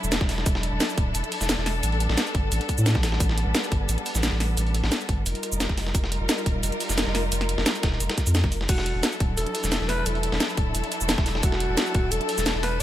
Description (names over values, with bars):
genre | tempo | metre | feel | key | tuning
liquid drum and bass | 175 BPM | 4/4 | straight | E minor | A4 = 441 Hz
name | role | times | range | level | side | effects
warm symphonic string section | sustained chords | 0.0-12.8 s | F#3 to Bb4 | -30 LUFS | left 2 dB | sidechain pumping
saturated sub bass | bass | 0.0-12.8 s | D1 to A2 | -26 LUFS | equal | none
garage drum kit | drums | 0.0-12.8 s | cabasa, crash cymbal, hi-hat, snare drum | -28 LUFS | equal | none
dusty soul sampler-style drum kit | drums | 0.1-12.8 s | hi-hat, snare drum | -31 LUFS | equal | high-pass filter on snare, high-pass filter on hats
electronic kick drum | drums | 0.2-12.0 s | none | -25 LUFS | equal | none
growling alto saxophone | melody | 8.7-12.8 s | F#4 to B4 | -30 LUFS | equal | ping-pong delay
room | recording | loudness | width
little or no reverb | none | -22 LUFS | side -13 dB against mid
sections
0.0-12.8 A section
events
none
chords
0.0 E9sus4; 1.8 A9sus4; 5.3 F9sus4; 8.7 E9sus4